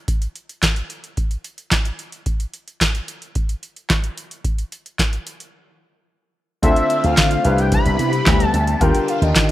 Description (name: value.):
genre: early-eighties boogie funk.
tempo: 110 BPM.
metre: 4/4.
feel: straight.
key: D dorian.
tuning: A4 = 440 Hz.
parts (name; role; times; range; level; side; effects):
booming analog drum machine; drums; 0.1-9.5 s; handclaps, hi-hat, kick drum, snare drum; -18 LUFS; equal; none.
fat analog lead; melody; 6.6-9.5 s; Eb5 to B5; -21 LUFS; left 1 dB; chorus.
clear baby grand piano; accompaniment; 6.6-9.5 s; D3 to B4; -22 LUFS; left 2 dB; none.
phased string machine; sustained chords; 6.6-9.5 s; C3 to G4; -23 LUFS; left 1 dB; ensemble chorus, phaser.
slap bass with an envelope filter; bass; 6.6-9.5 s; C2 to Eb3; -19 LUFS; equal; none.
room: light reverb, digital ambience.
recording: rough home demo mix.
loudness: -17 LUFS.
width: side -14 dB against mid.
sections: 0.0-6.6 A section; 6.6-9.5 B section.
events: break 5.5-6.6.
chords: 0.0 N.C.; 6.6 Dm7; 7.4 Cmaj7; 8.8 Ebmaj9.